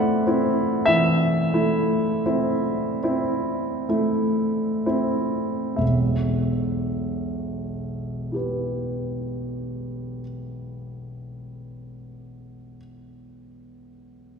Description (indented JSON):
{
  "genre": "classical, romantic nocturne for solo piano",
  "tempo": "19-34 BPM (dotted quarters)",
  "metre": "12/8",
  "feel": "rubato",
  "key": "E minor",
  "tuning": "A4 = 440 Hz",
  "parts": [
    { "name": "warm grand piano", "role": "solo", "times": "0.0-14.4 s", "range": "E1 to F#5", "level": "-22 LUFS", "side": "equal", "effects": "none" }
  ],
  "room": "wet church reverb, RT60 2.7 s",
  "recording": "heard from further back in the room",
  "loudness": "-21 LUFS",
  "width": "side -6 dB against mid",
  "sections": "0.0-5.8 A section; 5.8-14.4 B section",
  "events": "slowing down 0.0-5.8",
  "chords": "0.0 Am/E; 5.8 Em",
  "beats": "0.88 3.03 | 5.80 8.33 10.79 13.27"
}